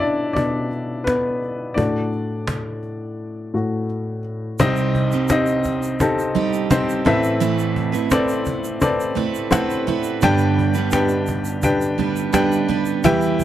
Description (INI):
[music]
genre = piano-driven pop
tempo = 85 BPM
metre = 4/4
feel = straight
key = G major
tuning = A4 = 440 Hz
[part]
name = warm upright piano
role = accompaniment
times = 0.0-13.4 s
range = G1 to G5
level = -20 LUFS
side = left 2 dB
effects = none
[part]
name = cajon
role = drums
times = 0.0-13.4 s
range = none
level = -26 LUFS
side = equal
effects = none
[part]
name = picked steel-string acoustic guitar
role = riff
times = 4.6-13.4 s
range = G2 to B4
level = -22 LUFS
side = right 8 dB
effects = none
[part]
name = tube shaker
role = percussion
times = 4.6-13.4 s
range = none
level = -37 LUFS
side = right 8 dB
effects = none
[sound]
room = moderate booth ambience, RT60 0.2 s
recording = dark, warm production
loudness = -18 LUFS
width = side -12 dB against mid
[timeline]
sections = 0.0-4.6 A section; 4.6-13.4 B section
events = upright piano solo 0.0-4.6; break 3.2-4.6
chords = 0.0 Bmadd11; 1.8 D/A; 4.6 Cm; 7.1 Amadd9; 10.2 G